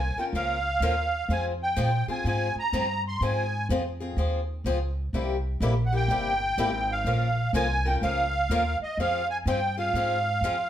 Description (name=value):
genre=acoustic string swing (jazz manouche)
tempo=125 BPM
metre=4/4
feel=swing 64% on 8ths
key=F minor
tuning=A4 = 440 Hz
part: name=musette accordion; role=melody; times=0.0-10.7 s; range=Eb5 to C6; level=-27 LUFS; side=right 1 dB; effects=none
part: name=upright bass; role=bass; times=0.0-10.7 s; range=G1 to Bb2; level=-28 LUFS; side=equal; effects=none
part: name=picked swing-style acoustic guitar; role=accompaniment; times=0.2-10.6 s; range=C3 to Bb4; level=-30 LUFS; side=left 4 dB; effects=none
room=moderate studio reverb, RT60 0.7 s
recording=heard from further back in the room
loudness=-24 LUFS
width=side -11 dB against mid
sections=0.0-10.7 A section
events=none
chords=0.0 Fm; 5.1 C7; 7.1 Bbm; 9.0 Fm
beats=0.34 0.81 | 1.29 1.77 2.25 2.73 | 3.21 3.69 4.17 4.65 | 5.13 5.61 6.09 6.57 | 7.05 7.53 8.02 8.50 | 8.98 9.46 9.94 10.42